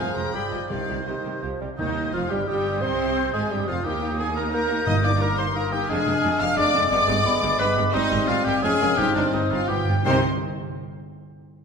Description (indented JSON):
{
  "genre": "classical, dramatic, fast romantic movement for symphony orchestra",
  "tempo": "174 BPM",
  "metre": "3/4",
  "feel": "straight",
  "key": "C minor",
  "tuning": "A4 = 445 Hz",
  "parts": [
    { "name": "warm symphonic violin section", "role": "melody", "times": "0.0-10.3 s", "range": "D5 to F6", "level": "-31 LUFS", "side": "left 5 dB", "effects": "none" },
    { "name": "dark clarinet", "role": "second line", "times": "0.0-10.2 s", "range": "B3 to C5", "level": "-31 LUFS", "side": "left 2 dB", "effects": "none" },
    { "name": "mellow hollow concert flute", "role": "second line", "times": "0.0-10.2 s", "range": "G5 to G6", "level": "-30 LUFS", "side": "left 4 dB", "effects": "none" },
    { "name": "rich studio violin section", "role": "second line", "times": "0.0-10.2 s", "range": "D4 to G5", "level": "-33 LUFS", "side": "left 2 dB", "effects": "none" },
    { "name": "warm oboe", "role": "second line", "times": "0.0-10.2 s", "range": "D4 to F5", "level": "-30 LUFS", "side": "equal", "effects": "none" },
    { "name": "clear symphonic viola section", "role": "accompaniment", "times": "0.0-10.3 s", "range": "Eb3 to G4", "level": "-34 LUFS", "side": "right 2 dB", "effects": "none" },
    { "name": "warm bassoon", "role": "accompaniment", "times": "0.0-10.2 s", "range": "Eb3 to C4", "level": "-30 LUFS", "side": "right 2 dB", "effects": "none" },
    { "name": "dark French horn section", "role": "sustained chords", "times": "0.0-10.2 s", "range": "Eb3 to Ab4", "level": "-33 LUFS", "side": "left 4 dB", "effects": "none" },
    { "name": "rich symphonic cello section", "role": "bass", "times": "0.0-10.2 s", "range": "Eb2 to C3", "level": "-31 LUFS", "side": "right 3 dB", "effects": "none" },
    { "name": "rich symphonic double bass section", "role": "bass", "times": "0.0-10.2 s", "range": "F1 to Eb2", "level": "-31 LUFS", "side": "right 3 dB", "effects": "none" },
    { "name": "timpani", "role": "percussion", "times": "0.7-2.3, 4.9-5.3, 9.0-10.2 s", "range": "G2 to C3", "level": "-30 LUFS", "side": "right 1 dB", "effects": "none" },
    { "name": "mellow trumpet section", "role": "stabs", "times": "1.8-10.2 s", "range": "D4 to F5", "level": "-29 LUFS", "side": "right 1 dB", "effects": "none" }
  ],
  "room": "wet concert hall reverb, RT60 2.0 s",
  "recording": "minimal, uncompressed stereo recording",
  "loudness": "-20 LUFS",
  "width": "side -6 dB against mid",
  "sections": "0.0-1.8 A section; 1.8-10.1 A section; 10.1-11.1 B section",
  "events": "timpani fill 9.7-10.1",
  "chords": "0.0 Fm; 0.3 G7b9; 0.7 Cm; 1.8 Ebadd9; 2.8 Cm; 3.9 Eb; 4.9 Eb/G; 5.9 Ddim/F; 6.9 G; 7.9 Abmaj7; 8.6 Db; 9.0 Cm/G; 9.7 G7; 10.1 Cm"
}